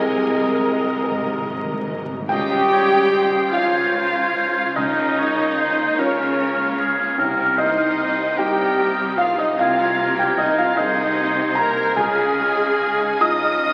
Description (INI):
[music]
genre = cinematic, emotional film score for orchestra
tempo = 49 BPM (dotted quarters)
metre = 6/8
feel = rubato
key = unclear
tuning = A4 = 440 Hz
[part]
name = warm symphonic violin section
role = melody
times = 0.0-13.7 s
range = Db5 to Eb6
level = -30 LUFS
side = equal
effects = none
[part]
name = clear oboe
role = second line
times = 0.0-13.7 s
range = Ab4 to Eb5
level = -27 LUFS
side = equal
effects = none
[part]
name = mellow clarinet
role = second line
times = 0.0-13.7 s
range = C4 to Eb5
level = -28 LUFS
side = equal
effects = none
[part]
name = mellow large flute ensemble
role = second line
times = 0.0-13.7 s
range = Bb5 to Ab6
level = -28 LUFS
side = equal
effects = none
[part]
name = rich symphonic violin section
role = second line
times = 0.0-13.7 s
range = G3 to Ab5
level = -35 LUFS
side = equal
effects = none
[part]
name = felt-muted upright piano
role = accompaniment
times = 0.0-13.7 s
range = C2 to Eb6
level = -26 LUFS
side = equal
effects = none
[part]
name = rich symphonic viola section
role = accompaniment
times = 0.0-13.7 s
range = Ab3 to Eb5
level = -27 LUFS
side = equal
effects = none
[part]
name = mellow French horn section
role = sustained chords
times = 0.0-13.7 s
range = Db3 to Ab4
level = -35 LUFS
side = equal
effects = none
[part]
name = rich symphonic cello section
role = bass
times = 0.0-13.7 s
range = C3 to Db3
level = -31 LUFS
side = equal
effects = none
[part]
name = rich symphonic double bass section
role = bass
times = 0.0-13.7 s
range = C2 to Db2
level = -38 LUFS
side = equal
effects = none
[part]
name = timpani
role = percussion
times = 0.0-2.3 s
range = Ab2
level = -35 LUFS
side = equal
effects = none
[sound]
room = wet scoring stage reverb, RT60 1.5 s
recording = very old 78 rpm record, vinyl crackle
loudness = -19 LUFS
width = mono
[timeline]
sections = 0.0-2.3 A section; 2.3-13.7 B section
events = timpani fill 0.0-2.3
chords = 0.0 Abadd9/C; 2.3 Dbadd9; 4.8 Bbm/Db; 7.2 Cm7; 9.6 Abadd9/C; 12.0 Dbadd9